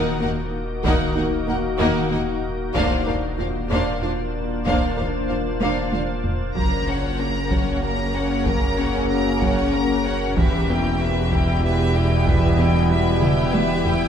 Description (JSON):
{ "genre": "cinematic, hybrid orchestral and electronic film score", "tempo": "63 BPM (dotted quarters)", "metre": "6/8", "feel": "straight", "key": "unclear", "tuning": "A4 = 444 Hz", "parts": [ { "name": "warm symphonic violin section", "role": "second line", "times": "0.0-14.1 s", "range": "G4 to Gb5", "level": "-30 LUFS", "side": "left 2 dB", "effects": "none" }, { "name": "warm symphonic viola section", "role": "accompaniment", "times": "0.0-14.1 s", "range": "Bb3 to G4", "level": "-28 LUFS", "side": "right 1 dB", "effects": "none" }, { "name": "organ-like drone", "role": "sustained chords", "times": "0.2-14.1 s", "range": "G3 to C5", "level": "-28 LUFS", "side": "left 2 dB", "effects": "ensemble chorus, built-in reverb" }, { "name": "warm French horn section", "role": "sustained chords", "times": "0.0-14.0 s", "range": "Bb3 to Gb4", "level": "-28 LUFS", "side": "left 4 dB", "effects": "none" }, { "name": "soft round pluck", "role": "arpeggios", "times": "0.0-13.4 s", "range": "Eb3 to Bb4", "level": "-30 LUFS", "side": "right 1 dB", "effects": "chorus" }, { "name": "warm sub bass", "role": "bass", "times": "0.0-14.1 s", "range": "Eb1 to Gb1", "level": "-30 LUFS", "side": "equal", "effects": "none" }, { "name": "rich symphonic cello section", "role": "bass", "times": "0.2-14.1 s", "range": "Eb2 to Gb2", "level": "-29 LUFS", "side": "right 1 dB", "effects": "none" }, { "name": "rich symphonic double bass section", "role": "bass", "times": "0.2-14.1 s", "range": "E1 to Eb2", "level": "-27 LUFS", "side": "right 2 dB", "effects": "none" }, { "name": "taiko ensemble", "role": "drums", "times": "0.8-14.1 s", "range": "none", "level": "-25 LUFS", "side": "equal", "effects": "none" }, { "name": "rich symphonic violin section", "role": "melody", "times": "6.6-14.1 s", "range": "E5 to Bb5", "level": "-28 LUFS", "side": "left 2 dB", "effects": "none" }, { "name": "clear trombone section", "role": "sustained chords", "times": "6.6-14.1 s", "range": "B2 to G3", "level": "-30 LUFS", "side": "right 3 dB", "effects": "none" } ], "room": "wet recital hall reverb, RT60 1.6 s", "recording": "recorded in a church or concert hall", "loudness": "-19 LUFS", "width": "side -8 dB against mid", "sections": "0.0-6.6 A section; 6.6-14.1 B section", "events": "drum fill 5.6-6.6, 13.2-14.1", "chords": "0.0 Ebm; 2.8 Bbadd9/Eb; 6.6 Gb; 10.4 Em" }